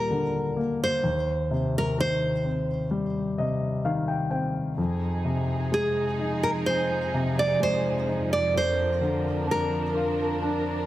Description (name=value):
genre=pop ballad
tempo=64 BPM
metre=4/4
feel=straight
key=unclear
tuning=A4 = 440 Hz
part: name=nylon-string guitar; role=melody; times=0.0-10.9 s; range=Ab4 to D5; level=-26 LUFS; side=right 1 dB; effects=none
part: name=warm grand piano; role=accompaniment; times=0.0-10.9 s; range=Eb2 to G5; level=-27 LUFS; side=left 2 dB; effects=none
part: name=dark symphonic string section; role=sustained chords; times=4.8-10.9 s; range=F2 to Bb4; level=-30 LUFS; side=right 1 dB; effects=none
room=moderate concert hall reverb, RT60 1.7 s, small room ambience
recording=none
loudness=-24 LUFS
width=side -14 dB against mid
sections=0.0-10.9 A section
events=grand piano fill 2.9-4.8, 10.4-10.9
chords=0.0 Ebmaj7; 1.0 Cm/Eb; 4.8 Fm7; 8.5 Bb/F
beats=0.10 | 1.03 1.97 2.91 3.85 | 4.79 5.72 6.66 7.60 | 8.54 9.47 10.41